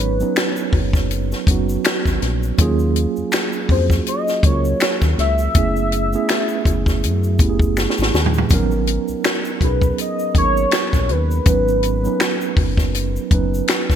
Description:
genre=R&B, neo-soul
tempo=81 BPM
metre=4/4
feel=swing 56% on 16ths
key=G# minor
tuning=A4 = 440 Hz
part: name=warm velvety synth lead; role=melody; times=0.0-13.3 s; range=B4 to E5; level=-23 LUFS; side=left 2 dB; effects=chorus
part: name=mellow tine electric piano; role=accompaniment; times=0.0-14.0 s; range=F#3 to C#5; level=-22 LUFS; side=right 6 dB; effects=fast stereo tremolo
part: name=round analog bass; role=bass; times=0.0-14.0 s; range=F#1 to F#2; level=-20 LUFS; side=left 1 dB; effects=none
part: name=egg shaker and finger snaps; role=percussion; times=0.0-14.0 s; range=none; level=-33 LUFS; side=left 4 dB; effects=none
part: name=compact cocktail drum kit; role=drums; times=0.4-14.0 s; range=finger snaps, hi-hat, kick drum, snare drum, toms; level=-18 LUFS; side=left 1 dB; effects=gated reverb
room=light reverb, small room ambience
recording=bright 1980s-style digital production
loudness=-16 LUFS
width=side -9 dB against mid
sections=0.0-14.0 A section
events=drum fill 7.8-8.5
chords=0.0 G#m11; 2.6 D#m11; 5.5 F#m11; 8.5 G#m11

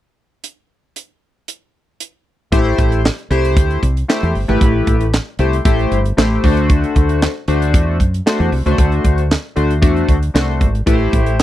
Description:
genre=early-eighties boogie funk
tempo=115 BPM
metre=4/4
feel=straight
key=A dorian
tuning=A4 = 440 Hz
part: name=tight funk drum kit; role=drums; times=0.4-11.4 s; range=handclaps, hi-hat, kick drum, snare drum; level=-15 LUFS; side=equal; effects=none
part: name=chorused polysynth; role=accompaniment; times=2.5-11.4 s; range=A3 to C5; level=-18 LUFS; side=left 2 dB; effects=none
part: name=woody fretless electric bass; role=bass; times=2.5-11.4 s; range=G1 to F#2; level=-16 LUFS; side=equal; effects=none
room=little or no reverb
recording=dry, close 1970s-style studio recording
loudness=-13 LUFS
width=side -13 dB against mid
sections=0.4-2.5 A section; 2.5-11.4 B section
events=none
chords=0.4 N.C.; 2.5 Am7; 6.4 D7; 10.9 Am7

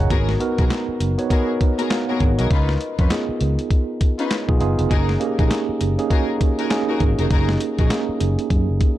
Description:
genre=R&B, new jack swing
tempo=100 BPM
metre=4/4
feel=swing 60% on 16ths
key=unclear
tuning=A4 = 441 Hz
part: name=mellow tine electric piano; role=accompaniment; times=0.0-9.0 s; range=A#3 to A#5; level=-23 LUFS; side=right 3 dB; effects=medium stereo tremolo
part: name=fingered electric bass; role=bass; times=0.0-8.8 s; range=E#1 to F#2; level=-21 LUFS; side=equal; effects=none
part: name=dark studio string section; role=stabs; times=0.1-7.9 s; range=B3 to B4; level=-27 LUFS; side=left 5 dB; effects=tape echo
part: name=boom bap sampler-style drum kit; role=drums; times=0.1-9.0 s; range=handclaps, hi-hat, kick drum, snare drum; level=-20 LUFS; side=equal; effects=none
room=little or no reverb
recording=dark, warm production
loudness=-17 LUFS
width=side -14 dB against mid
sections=0.0-9.0 A section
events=none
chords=0.1 G#m9; 2.5 C#9; 4.9 F#69

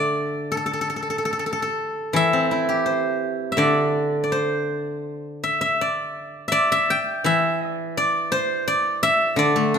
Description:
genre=chinese traditional, Chinese solo plucked strings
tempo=83 BPM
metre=2/4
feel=rubato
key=D shang mode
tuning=A4 = 440 Hz
part: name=steel-string zither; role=solo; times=0.0-9.8 s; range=D3 to G5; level=-20 LUFS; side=equal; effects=none
room=moderate recital hall reverb, RT60 1.6 s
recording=minimal, uncompressed stereo recording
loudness=-20 LUFS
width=side -6 dB against mid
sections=0.0-9.8 A section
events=none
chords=none

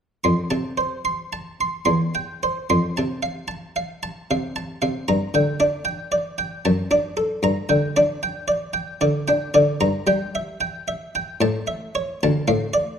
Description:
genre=classical, baroque-style suite movement for harpsichord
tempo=76 BPM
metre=3/4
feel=rubato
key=F major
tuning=A4 = 439 Hz
part: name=buff-stop harpsichord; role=solo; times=0.2-13.0 s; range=D2 to C6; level=-20 LUFS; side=equal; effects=none
room=moderate recital hall reverb, RT60 1.4 s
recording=close, detailed microphones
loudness=-20 LUFS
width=side -8 dB against mid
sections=0.2-13.0 A section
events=none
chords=0.2 F; 1.9 C/E; 2.7 F; 5.1 Gm; 6.7 D/F#; 7.4 G5; 9.8 Edim/G; 11.4 A; 12.2 Dm

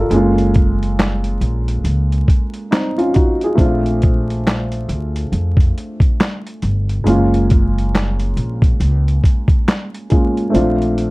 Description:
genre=lo-fi hip hop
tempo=69 BPM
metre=4/4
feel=swing 61% on 16ths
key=unclear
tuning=A4 = 440 Hz
part: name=dark upright piano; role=accompaniment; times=0.0-11.1 s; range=Ab3 to F5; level=-19 LUFS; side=equal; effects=cassette tape, low-pass filter, plate reverb
part: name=upright bass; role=bass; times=0.0-11.1 s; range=Gb1 to F2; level=-17 LUFS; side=equal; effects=none
part: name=dusty soul sampler-style drum kit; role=drums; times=0.1-11.1 s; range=handclaps, hi-hat, kick drum, snare drum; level=-15 LUFS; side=equal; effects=none
room=light reverb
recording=dark, warm production, vinyl crackle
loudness=-14 LUFS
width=side -22 dB against mid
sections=0.0-11.1 A section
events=kick muted 10.5-11.1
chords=0.1 Gbmaj9; 3.6 Bbmaj9; 7.1 Gbmaj9; 10.5 Bbmaj9

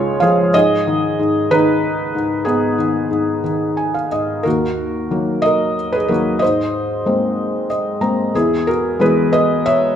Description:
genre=classical, lyrical solo piano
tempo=61 BPM (dotted quarters)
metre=6/8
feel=rubato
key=G# dorian, Eb phrygian from 4.5 s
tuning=A4 = 440 Hz
part: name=felt-muted upright piano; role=solo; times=0.0-10.0 s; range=C#2 to Bb5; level=-14 LUFS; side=equal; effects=none
room=moderate recital hall reverb, RT60 1.5 s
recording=minimal, uncompressed stereo recording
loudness=-15 LUFS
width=side -9 dB against mid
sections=0.0-4.5 A section; 4.5-10.0 B section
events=felt piano fill 3.5-4.5, 7.4-8.3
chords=0.0 C#; 0.5 G#m; 4.5 Ebm; 6.4 Abadd9; 8.3 E

